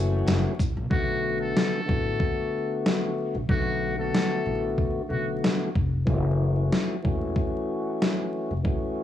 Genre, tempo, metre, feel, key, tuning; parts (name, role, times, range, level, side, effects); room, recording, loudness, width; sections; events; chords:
hip hop, boom-bap hip-hop; 93 BPM; 4/4; swing 56% on 16ths; B minor; A4 = 440 Hz
tonewheel organ; accompaniment; 0.0-9.0 s; D3 to F#4; -28 LUFS; left 2 dB; slow rotary speaker, cassette tape, high-pass filter, low-pass filter
bright saxophone section; stabs; 0.0-0.6 s; A3 to C#5; -46 LUFS; left 4 dB
upright bass; bass; 0.0-8.6 s; E1 to B1; -27 LUFS; left 1 dB
trip hop sampler-style drum kit; drums; 0.3-8.8 s; hi-hat, kick drum, shaker, snare drum; -26 LUFS; equal
trumpet with metal mute; melody; 0.9-5.3 s; F#4 to A4; -32 LUFS; left 1 dB; high-pass filter, low-pass filter, analog delay
small room ambience; dry, gritty hardware recording, transformer saturation, vinyl crackle, studio reverb; -23 LUFS; side -11 dB against mid
0.9-9.0 A section
hi-hats muted 0.9-9.0
0.0 F#m7; 0.9 Bm7; 6.1 F#m7